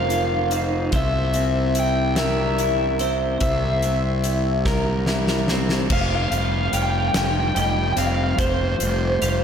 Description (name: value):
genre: post-rock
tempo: 48 BPM (dotted quarters)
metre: 6/8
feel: straight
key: unclear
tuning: A4 = 439 Hz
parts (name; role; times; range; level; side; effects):
- overdriven electric guitar; melody; 0.0-9.4 s; C5 to G5; -24 LUFS; equal; tape echo
- electric guitar through a small old amp; arpeggios; 0.0-9.4 s; C3 to C5; -27 LUFS; left 3 dB; spring reverb, tape echo
- twelve-string electric guitar; arpeggios; 0.0-9.4 s; Bb4 to F5; -32 LUFS; equal; analog chorus, tape echo
- fuzz fingered electric bass; bass; 0.0-9.4 s; F1 to C2; -23 LUFS; equal; overdrive
- huge arena drum kit; drums; 0.1-9.4 s; crash cymbal, hi-hat, kick drum, snare drum; -26 LUFS; equal; none
room: moderate lush hall reverb, RT60 2.3 s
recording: dreamy mix soaked in reverb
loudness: -19 LUFS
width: side -7 dB against mid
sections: 0.0-5.9 A section; 5.9-9.4 B section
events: drum fill 4.7-5.9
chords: 0.0 F5; 0.9 C7; 5.9 Fsus2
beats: | 0.93 2.17 | 3.42 4.66 | 5.90 7.14 | 8.38